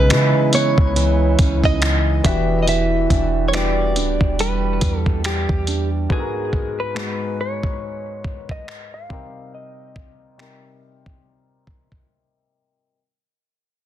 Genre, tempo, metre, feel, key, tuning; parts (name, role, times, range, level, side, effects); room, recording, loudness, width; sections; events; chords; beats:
contemporary R&B; 70 BPM; 4/4; swing 58% on 16ths; A4 = 440 Hz
direct-recorded clean electric guitar; melody; 0.0-12.1 s; G4 to E#5; -24 LUFS; right 1 dB; wide subtle chorus, low-pass filter, ping-pong delay
warm grand piano; accompaniment; 0.0-13.0 s; G#2 to B4; -25 LUFS; left 5 dB; low-pass filter
nylon-string guitar; arpeggios; 0.0-6.2 s; C#3 to D#4; -23 LUFS; right 8 dB; low-pass filter
warm 808-style bass; bass; 0.0-6.1 s; D1 to C#3; -20 LUFS; equal
dusty soul sampler-style drum kit; drums; 0.1-12.1 s; finger snaps, hi-hat, kick drum; -21 LUFS; equal
digital ambience; dense, heavily limited modern master; -16 LUFS; side -11 dB against mid
0.0-13.0 A section
fade-out 0.0-13.0; filter sweep 0.0-13.0; break 12.1-13.0
0.0 C#m9; 2.2 Em9; 6.1 G#m9; 9.1 Cm7
0.10 0.95 1.81 | 2.67 3.53 4.38 5.24 | 6.10 6.96 7.81 8.67 | 9.53 10.38 11.24 12.10